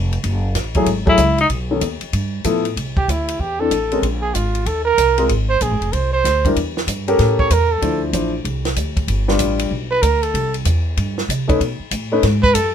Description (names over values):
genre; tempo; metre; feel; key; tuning
jazz, small-group swing and bop; 190 BPM; 4/4; swing 64% on 8ths; C major; A4 = 441 Hz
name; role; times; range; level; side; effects
upright bass; bass; 0.0-12.7 s; F1 to C3; -20 LUFS; equal; none
compact cocktail drum kit; drums; 0.1-12.6 s; hi-hat, kick drum, ride cymbal, snare drum; -23 LUFS; equal; none
warm grand piano; accompaniment; 0.8-12.2 s; D#3 to C5; -18 LUFS; left 3 dB; none
warm tenor saxophone; melody; 1.1-1.5 s; D#4 to E4; -14 LUFS; left 3 dB; none
breathy trumpet; second line; 3.0-12.7 s; E4 to C#5; -18 LUFS; right 4 dB; none
room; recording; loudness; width
light reverb; minimal, uncompressed stereo recording; -16 LUFS; side -8 dB against mid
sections
0.0-2.8 A section; 2.8-12.7 B section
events
trumpet solo 2.8-12.7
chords
0.2 F#m9; 1.5 B9; 2.1 G13; 2.8 C69; 4.0 Bb5; 4.7 Ebsus2; 5.3 Abadd9; 6.6 A7b9; 7.8 Dm9; 9.1 G7; 10.3 C; 11.6 B7(no3)